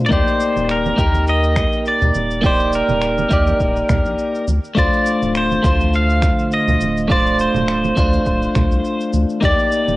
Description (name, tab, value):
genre	sunset chillout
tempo	103 BPM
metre	4/4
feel	swing 56% on 16ths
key	Eb lydian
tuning	A4 = 440 Hz
part	clean electric guitar	accompaniment	0.0-10.0 s	D3 to D5	-18 LUFS	equal	auto-pan, cassette tape
part	pedal steel guitar	melody	0.1-10.0 s	Bb4 to F5	-21 LUFS	equal	cassette tape
part	round analog bass	bass	0.1-10.0 s	D1 to Eb2	-20 LUFS	equal	none
part	electronic kick drum	drums	0.1-9.6 s	none	-19 LUFS	equal	cassette tape
part	electronic shaker and finger snaps	drums	0.1-10.0 s	none	-29 LUFS	equal	cassette tape
part	congas	percussion	0.6-10.0 s	none	-27 LUFS	right 5 dB	none
room	light reverb, digital ambience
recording	home recording on cassette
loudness	-14 LUFS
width	side -18 dB against mid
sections	0.0-10.0 A section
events	none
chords	0.1 Ebmaj7; 4.5 Dm7; 9.4 Ebmaj7